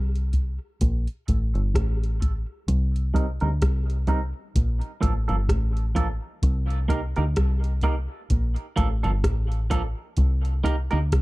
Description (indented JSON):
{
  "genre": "dub reggae",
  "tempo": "64 BPM",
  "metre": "4/4",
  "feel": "swing 58% on 16ths",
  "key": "C dorian",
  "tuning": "A4 = 440 Hz",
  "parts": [
    { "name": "deep dub fingered electric bass", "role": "bass", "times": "0.0-11.2 s", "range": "G1 to D2", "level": "-24 LUFS", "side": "equal", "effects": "none" },
    { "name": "soft vintage rhythm box", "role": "drums", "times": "0.2-11.2 s", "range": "hi-hat, kick drum, rim click", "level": "-25 LUFS", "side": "equal", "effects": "none" },
    { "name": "clean electric guitar", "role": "accompaniment", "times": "0.3-11.0 s", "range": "F3 to Bb4", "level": "-30 LUFS", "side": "right 3 dB", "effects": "high-pass filter, low-pass filter, dub echo" }
  ],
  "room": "digital ambience",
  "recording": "dry, close 1970s-style studio recording",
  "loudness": "-22 LUFS",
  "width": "side -20 dB against mid",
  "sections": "0.0-11.2 A section",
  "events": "filter sweep on clean electric guitar 0.0-11.2",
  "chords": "0.0 Cm7; 0.8 Bbmaj7; 2.7 Cm7; 4.6 Bbmaj7; 6.4 Cm7; 8.3 Bbmaj7; 10.2 Cm7"
}